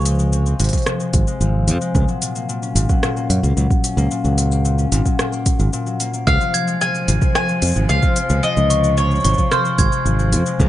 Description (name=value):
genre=folktronica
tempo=111 BPM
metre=4/4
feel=straight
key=Db major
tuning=A4 = 440 Hz
part: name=concert harp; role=arpeggios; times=0.0-10.7 s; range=Bb2 to Db4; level=-22 LUFS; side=left 3 dB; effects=tape echo
part: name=modern bright fingered electric bass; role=bass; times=0.0-10.7 s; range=Ab1 to Gb2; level=-17 LUFS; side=right 1 dB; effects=none
part: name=organic electronic drum kit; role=drums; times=0.0-10.7 s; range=hi-hat, rim click, shaker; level=-24 LUFS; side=left 1 dB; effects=overdrive
part: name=electronic kick drum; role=drums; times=0.7-10.7 s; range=none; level=-18 LUFS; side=right 1 dB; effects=overdrive
part: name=mandolin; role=melody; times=6.3-10.3 s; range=C5 to Ab5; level=-21 LUFS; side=left 1 dB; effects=tape echo
part: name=glockenspiel with soft plastic mallets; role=second line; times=6.3-10.0 s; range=Db6 to Ab6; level=-25 LUFS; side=right 3 dB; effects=tape echo
part: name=rich string quartet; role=sustained chords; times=6.3-10.7 s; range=F3 to Bb4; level=-28 LUFS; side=right 2 dB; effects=vintage 12-bit sampler grit
room=studio ambience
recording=nothing above 10.3 kHz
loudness=-15 LUFS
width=side -13 dB against mid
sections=0.0-10.7 A section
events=none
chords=0.0 Dbmaj7; 1.9 Gb; 6.3 Dbmaj7